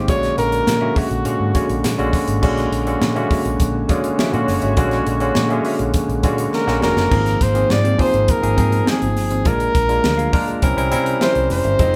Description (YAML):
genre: polished 1980s jazz-funk pop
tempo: 102 BPM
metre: 4/4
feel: straight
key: unclear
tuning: A4 = 440 Hz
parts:
  - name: barky tine electric piano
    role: accompaniment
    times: 0.0-12.0 s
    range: D3 to G5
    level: -23 LUFS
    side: equal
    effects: none
  - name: vintage muted fingered electric bass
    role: bass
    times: 0.0-12.0 s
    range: Fb1 to C3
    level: -24 LUFS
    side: equal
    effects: none
  - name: breathy flugelhorn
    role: melody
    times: 0.1-1.9, 6.5-12.0 s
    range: F#4 to D5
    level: -22 LUFS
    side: equal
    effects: none
  - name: mellow electric guitar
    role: riff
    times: 0.1-12.0 s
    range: C4 to F5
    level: -29 LUFS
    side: equal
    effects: none
  - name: crisp fusion drum kit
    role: drums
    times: 0.1-11.9 s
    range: crash cymbal, hi-hat, kick drum, snare drum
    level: -24 LUFS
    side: equal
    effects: none
  - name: warm horn section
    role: second line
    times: 3.6-6.8 s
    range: Ab3 to C#5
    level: -31 LUFS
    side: equal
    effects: none
room: moderate large studio reverb, RT60 0.9 s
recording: band playing live in one room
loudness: -18 LUFS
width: mono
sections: 0.0-2.4 A section; 2.4-7.1 B section; 7.1-12.0 C section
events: flugelhorn solo 0.0-2.4; drum fill 6.5-7.1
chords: 0.1 Bb7alt; 7.1 Ab69; 9.5 Bb7; 10.6 C7b9